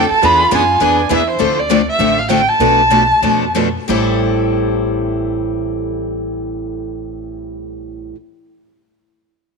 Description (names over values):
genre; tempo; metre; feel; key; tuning
acoustic string swing (jazz manouche); 174-205 BPM; 4/4; swing 58% on 8ths; A minor; A4 = 440 Hz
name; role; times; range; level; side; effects
warm violin; melody; 0.0-3.6 s; C5 to B5; -13 LUFS; right 1 dB; slapback echo
growling soprano saxophone; second line; 0.0-1.4 s; D4 to A4; -20 LUFS; right 10 dB; none
picked steel-string acoustic guitar; accompaniment; 0.0-8.2 s; A2 to A4; -19 LUFS; left 12 dB; none
picked steel-string acoustic guitar; accompaniment; 0.0-8.2 s; A2 to B4; -21 LUFS; right 11 dB; none
upright bass; bass; 0.0-8.1 s; A1 to F#2; -24 LUFS; left 1 dB; none
room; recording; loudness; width
moderate echo chamber reverb, RT60 2.2 s; 1960s-style stereo with parts hard left and right; -12 LUFS; side -4 dB against mid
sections
0.0-1.4 A section; 1.4-3.9 B section; 3.9-6.7 C section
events
slowing down 1.4-3.9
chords
0.2 E7b9; 1.4 Dm7; 2.6 Bm7b5; 3.9 Am7